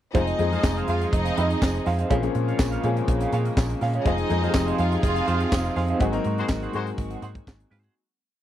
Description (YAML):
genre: disco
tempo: 123 BPM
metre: 4/4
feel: straight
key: unclear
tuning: A4 = 440 Hz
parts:
  - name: clear studio string section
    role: second line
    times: 0.1-5.7 s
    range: Eb4 to F5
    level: -29 LUFS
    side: equal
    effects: none
  - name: clear concert grand piano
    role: accompaniment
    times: 0.1-8.0 s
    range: F3 to Bb4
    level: -29 LUFS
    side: left 6 dB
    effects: none
  - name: semi-hollow electric guitar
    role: accompaniment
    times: 0.1-7.9 s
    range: Eb4 to Gb5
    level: -30 LUFS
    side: right 4 dB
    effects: wah, tremolo
  - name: rich studio string section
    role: sustained chords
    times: 0.1-7.9 s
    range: Db3 to Ab4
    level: -30 LUFS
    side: right 3 dB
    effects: none
  - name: hollow-body short-scale fingered electric bass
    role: bass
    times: 0.1-7.9 s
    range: F1 to Bb2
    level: -26 LUFS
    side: equal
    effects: none
  - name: tight funk drum kit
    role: drums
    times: 0.1-8.0 s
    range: handclaps, hi-hat, kick drum, snare drum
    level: -24 LUFS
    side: equal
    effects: none
  - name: tambourine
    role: percussion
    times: 0.6-7.6 s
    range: none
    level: -42 LUFS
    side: right 15 dB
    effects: none
  - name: clear horn section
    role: stabs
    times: 6.4-6.9 s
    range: Ab3 to C5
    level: -31 LUFS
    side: left 7 dB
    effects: none
room: little or no reverb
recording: dry, close 1970s-style studio recording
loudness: -21 LUFS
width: side -12 dB against mid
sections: 0.1-8.0 pre-chorus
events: fade-out 6.0-8.0; band accent 6.0-8.0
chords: 0.1 Fm7; 2.1 Bbm7; 4.1 Fm7; 6.0 Ab7